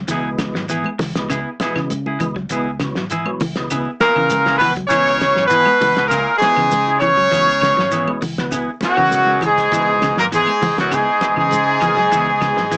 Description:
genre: afrobeat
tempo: 100 BPM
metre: 4/4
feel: straight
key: C# dorian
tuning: A4 = 440 Hz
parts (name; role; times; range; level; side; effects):
- clean electric guitar; arpeggios; 0.0-12.8 s; C#3 to F#3; -26 LUFS; equal; cassette tape
- fingered electric bass; bass; 0.0-12.8 s; G#1 to C#3; -27 LUFS; equal; none
- percussive tonewheel organ; accompaniment; 0.1-12.7 s; B2 to B3; -27 LUFS; equal; overdrive, fast rotary speaker, cassette tape
- clean electric guitar; stabs; 0.1-12.8 s; B3 to G#4; -24 LUFS; right 1 dB; cassette tape
- cloth-damped thuddy drum kit; drums; 0.1-12.8 s; hi-hat, kick drum, snare drum; -26 LUFS; equal; cassette tape
- congas; percussion; 0.1-12.8 s; none; -27 LUFS; equal; none
- shekere; percussion; 0.1-12.8 s; none; -33 LUFS; equal; none
- claves; percussion; 0.4-12.6 s; none; -30 LUFS; left 1 dB; none
- bright horn section; melody; 4.0-12.8 s; F#4 to C#5; -14 LUFS; equal; none
- raspy baritone saxophone; second line; 4.0-12.8 s; F#2 to C#3; -22 LUFS; equal; cassette tape
- warm trombone; second line; 4.0-12.8 s; F#3 to C#4; -27 LUFS; equal; cassette tape
room: moderate booth ambience, RT60 0.3 s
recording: home recording on cassette, small speaker sound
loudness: -14 LUFS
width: side -30 dB against mid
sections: 0.0-12.8 A section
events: none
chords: 0.0 C#m7

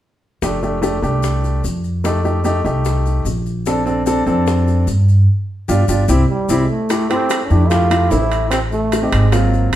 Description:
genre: Afro-Cuban jazz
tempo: 148 BPM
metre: 4/4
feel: straight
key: F major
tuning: A4 = 440 Hz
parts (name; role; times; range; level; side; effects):
- clear concert grand piano; accompaniment; 0.4-9.7 s; Gb3 to A4; -19 LUFS; left 1 dB; none
- upright bass; bass; 0.4-9.8 s; F1 to G2; -16 LUFS; equal; none
- bongos; percussion; 0.4-9.8 s; none; -26 LUFS; left 6 dB; none
- maracas; percussion; 0.4-9.8 s; none; -33 LUFS; left 5 dB; none
- clear trombone; melody; 6.3-9.5 s; G3 to F4; -19 LUFS; right 2 dB; none
- timbales; percussion; 6.9-9.8 s; none; -24 LUFS; right 3 dB; none
room: moderate large studio reverb, RT60 1.0 s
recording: band playing live in one room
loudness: -14 LUFS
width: side -12 dB against mid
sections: 0.4-6.9 A section; 6.9-9.8 B section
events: band accent 5.3-6.9; grand piano fill 6.1-6.9; drum fill 6.5-6.9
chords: 0.4 F69; 2.0 F9; 3.7 Bbmaj9; 5.3 G5; 6.1 C; 6.9 Fmaj7; 8.5 Am7b5

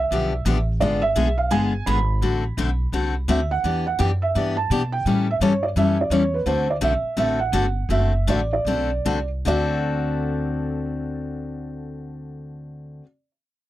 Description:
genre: acoustic string swing (jazz manouche)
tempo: 145-170 BPM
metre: 4/4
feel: swing 61% on 8ths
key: D mixolydian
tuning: A4 = 440 Hz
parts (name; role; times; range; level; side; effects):
- felt-muted upright piano; melody; 0.0-13.0 s; B4 to B5; -25 LUFS; right 4 dB; none
- upright bass; bass; 0.0-13.0 s; F#1 to B2; -25 LUFS; right 1 dB; none
- picked steel-string acoustic guitar; accompaniment; 0.1-13.1 s; D3 to A4; -24 LUFS; left 4 dB; none
room: little or no reverb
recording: dry, close 1970s-style studio recording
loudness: -20 LUFS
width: side -14 dB against mid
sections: 0.0-9.5 A section; 9.5-12.8 B section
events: slowing down 6.5-9.5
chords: 0.0 G7; 0.8 G#dim7; 2.2 D7; 3.6 Em7; 5.0 A7; 6.5 D7

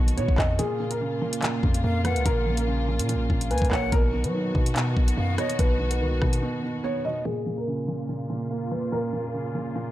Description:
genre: hip hop, drill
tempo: 144 BPM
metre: 4/4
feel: half-time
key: Bb phrygian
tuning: A4 = 439 Hz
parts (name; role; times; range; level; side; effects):
- dark concert grand piano; melody; 0.0-9.9 s; Ab4 to D#5; -31 LUFS; equal; low-pass filter
- felt-muted upright piano; accompaniment; 0.0-9.9 s; Bb2 to B3; -29 LUFS; right 2 dB; low-pass filter
- dark studio string section; sustained chords; 0.0-9.9 s; Db3 to F#4; -34 LUFS; left 2 dB; low-pass filter
- long sustained 808-style bass; bass; 0.0-6.4 s; Bb1 to F#3; -26 LUFS; equal; none
- drill drum kit; drums; 0.1-6.4 s; handclaps, hi-hat, kick drum, rim click; -24 LUFS; equal; none
- silver concert flute; second line; 1.8-5.6 s; D#5 to Ab5; -34 LUFS; left 4 dB; digital delay
room: small room ambience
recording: none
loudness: -23 LUFS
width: side -14 dB against mid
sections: 0.0-7.3 A section; 7.3-9.9 B section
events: break 0.6-1.4, 6.4-7.3; filter sweep 7.3-9.9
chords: 0.0 B; 0.6 Bbm; 3.9 B; 7.3 Bbm

